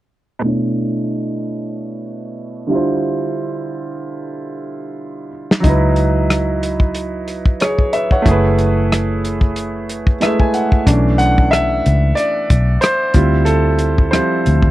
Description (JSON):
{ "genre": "R&B, neo-soul", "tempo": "92 BPM", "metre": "4/4", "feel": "swing 56% on 16ths", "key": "unclear", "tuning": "A4 = 443 Hz", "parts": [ { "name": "clear baby grand piano", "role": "accompaniment", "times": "0.4-14.7 s", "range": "B2 to G#5", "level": "-17 LUFS", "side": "right 1 dB", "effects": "low-pass filter" }, { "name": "warm soul drum kit", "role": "drums", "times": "5.5-14.7 s", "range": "hi-hat, kick drum, rim click, snare drum", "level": "-15 LUFS", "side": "equal", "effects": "none" }, { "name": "vintage muted fingered electric bass", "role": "bass", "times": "5.7-14.7 s", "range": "F#1 to D2", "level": "-16 LUFS", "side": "left 1 dB", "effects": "none" } ], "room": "little or no reverb", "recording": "dry, close 1970s-style studio recording", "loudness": "-13 LUFS", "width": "side -15 dB against mid", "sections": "0.4-10.9 A section; 10.9-14.7 B section", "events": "filter sweep on grand piano 0.4-10.9; drum fill 4.3-5.6; grand piano fill 9.9-10.9; grand piano solo 10.9-14.7", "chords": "0.4 Bm11; 2.7 Dm11; 5.6 C#m11; 8.3 F#m11; 10.9 Bm11; 13.1 Dm11", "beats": "| 0.43 1.08 1.73 2.38 | 3.04 3.69 4.34 4.99 | 5.65 6.30 6.95 7.60 | 8.25 8.91 9.56 10.21 | 10.86 11.52 12.17 12.82 | 13.47 14.12" }